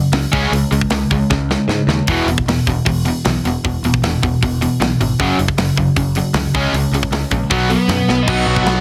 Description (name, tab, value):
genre	punk rock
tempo	155 BPM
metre	4/4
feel	straight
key	E major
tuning	A4 = 440 Hz
part	cranked stack guitar	riff	0.0-8.8 s	E2 to C#4	-22 LUFS	equal	overdrive
part	cranked stack guitar	riff	0.0-8.8 s	E2 to C#4	-22 LUFS	equal	overdrive
part	modern bright picked electric bass	bass	0.1-8.8 s	E1 to G#2	-22 LUFS	equal	none
part	tight metal drum kit	drums	0.1-8.8 s	crash cymbal, hi-hat, kick drum, snare drum	-23 LUFS	equal	none
part	dark smooth lead guitar	melody	7.7-8.7 s	B3 to F#5	-21 LUFS	equal	overdrive
part	fuzz guitar	riff	8.3-8.8 s	B2 to B3	-24 LUFS	equal	distortion
room	light reverb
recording	heavily compressed radio sound, multiband compression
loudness	-16 LUFS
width	mono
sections	0.0-8.3 A section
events	drum fill 1.3-2.1, 8.1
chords	0.3 C#5; 2.1 E5; 5.2 F#5; 6.5 C#5; 7.5 B5